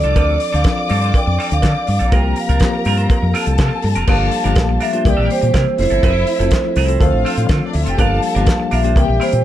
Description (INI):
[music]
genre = disco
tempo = 123 BPM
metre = 4/4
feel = straight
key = unclear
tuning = A4 = 445 Hz
[part]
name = vibraphone with medium hard mallets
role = melody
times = 0.0-9.4 s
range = C5 to G5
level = -21 LUFS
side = right 2 dB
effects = none
[part]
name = dark studio string section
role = second line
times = 0.0-9.4 s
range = D4 to D6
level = -24 LUFS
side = left 3 dB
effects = none
[part]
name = semi-hollow electric guitar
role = accompaniment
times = 0.0-9.4 s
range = C4 to C5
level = -26 LUFS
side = right 6 dB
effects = phaser
[part]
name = tine electric piano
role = accompaniment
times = 0.0-9.4 s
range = D3 to A4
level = -22 LUFS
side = left 3 dB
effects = medium stereo tremolo
[part]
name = fingered electric bass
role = bass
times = 0.0-9.4 s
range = F1 to D3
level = -17 LUFS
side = equal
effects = none
[part]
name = damped 70s drum kit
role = drums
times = 0.0-9.4 s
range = crash cymbal, handclaps, hi-hat, kick drum, snare drum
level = -18 LUFS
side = equal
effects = none
[part]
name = cowbell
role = percussion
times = 0.2-9.1 s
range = none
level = -28 LUFS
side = right 4 dB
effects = none
[sound]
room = little or no reverb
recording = dark, warm production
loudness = -13 LUFS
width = side -12 dB against mid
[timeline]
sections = 0.0-4.1 A section; 4.1-9.4 B section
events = none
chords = 0.0 Dm7; 2.1 C7sus4; 4.1 Gm7; 5.1 C7; 5.8 Fmaj7; 7.0 Dm7; 8.0 Gm7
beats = | 0.16 0.65 1.14 1.63 | 2.12 2.61 3.10 3.59 | 4.08 4.57 5.06 5.54 | 6.03 6.52 7.01 7.50 | 7.98 8.47 8.96